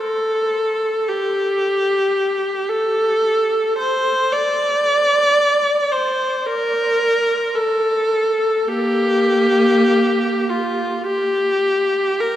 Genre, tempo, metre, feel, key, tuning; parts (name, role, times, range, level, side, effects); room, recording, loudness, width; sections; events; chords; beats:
classical, free, expressive piece for unaccompanied viola; free time; A4 = 441 Hz
clear viola; solo; 0.0-12.4 s; Bb3 to D5; -16 LUFS; equal
wet cathedral reverb, RT60 5.3 s; -16 LUFS; side -12 dB against mid
0.0-12.4 A section
free time